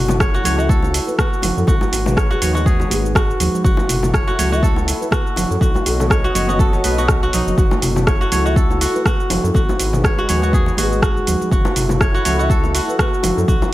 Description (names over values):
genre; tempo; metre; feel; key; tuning
afro house; 122 BPM; 4/4; swing 56% on 16ths; F# dorian; A4 = 440 Hz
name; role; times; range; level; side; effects
dark analog pad; sustained chords; 0.0-13.7 s; G#3 to D#5; -26 LUFS; left 1 dB; chorus, sidechain pumping
kora; arpeggios; 0.0-13.7 s; D#4 to C#5; -22 LUFS; right 1 dB; sidechain pumping, digital delay
round analog bass; bass; 0.0-13.6 s; F#1 to F#2; -21 LUFS; equal; sidechain pumping
afro-pop drum kit; drums; 0.1-13.7 s; cabasa, hi-hat, rim click, toms; -22 LUFS; equal; none
bongos; percussion; 0.1-13.7 s; none; -27 LUFS; left 3 dB; none
congas; percussion; 0.1-13.7 s; none; -27 LUFS; right 4 dB; none
electronic kick drum; drums; 0.2-13.6 s; none; -17 LUFS; equal; none
mellow hollow bansuri; melody; 0.6-13.5 s; G#4 to E5; -29 LUFS; left 1 dB; digital delay
room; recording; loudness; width
small room ambience; faint mains hum; -14 LUFS; side -16 dB against mid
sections
0.0-13.7 A section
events
none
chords
0.0 F#m7; 1.7 G#m; 3.6 F#m7; 5.6 B7; 7.6 F#m7; 9.5 G#m; 11.5 F#m7